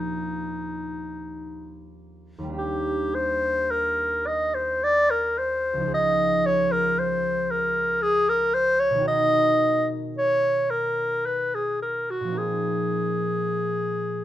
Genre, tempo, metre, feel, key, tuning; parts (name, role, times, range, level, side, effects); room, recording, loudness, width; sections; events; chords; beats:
classical, impressionist duo for clarinet and harp; 55 BPM; 3/4; uneven beats, rubato; A4 = 440 Hz
warm clarinet; melody; 0.0-14.2 s; Eb4 to D#5; -22 LUFS; equal
concert harp; accompaniment; 0.0-14.2 s; Db2 to A#4; -31 LUFS; right 1 dB
light reverb; -21 LUFS; side -12 dB against mid
0.0-2.6 A section; 2.6-14.2 A section
0.0 Ebmaj9; 2.6 Ebmaj7; 5.9 Dbadd9; 9.1 Bmaj7; 12.4 Bb9sus4
0.17 1.38 | 2.56 3.71 4.83 | 5.92 6.98 8.03 | 9.08 10.16 11.26 | 12.38 13.54